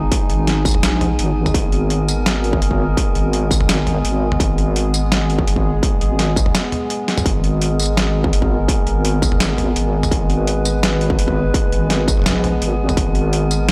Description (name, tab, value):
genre	half-time drum and bass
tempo	168 BPM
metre	4/4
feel	half-time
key	G# minor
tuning	A4 = 439 Hz
part	dark analog pad	sustained chords	0.0-13.7 s	G#3 to B4	-26 LUFS	equal	lush chorus, sidechain pumping
part	deep soft wobble bass	bass	0.0-13.7 s	G#1 to A#1	-21 LUFS	equal	chorus, tube saturation
part	metallic inharmonic drone	texture	0.0-13.7 s	G#4	-30 LUFS	equal	chorus, built-in reverb
part	boom bap sampler-style drum kit	drums	0.1-13.7 s	hi-hat, snare drum, tambourine, toms	-23 LUFS	equal	overdrive
part	electronic kick drum	drums	0.1-13.0 s	none	-21 LUFS	equal	distortion
room	light reverb, digital ambience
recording	dry, gritty hardware recording, transformer saturation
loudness	-17 LUFS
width	mono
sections	0.0-13.7 A section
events	drum fill 7.1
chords	0.0 G#madd9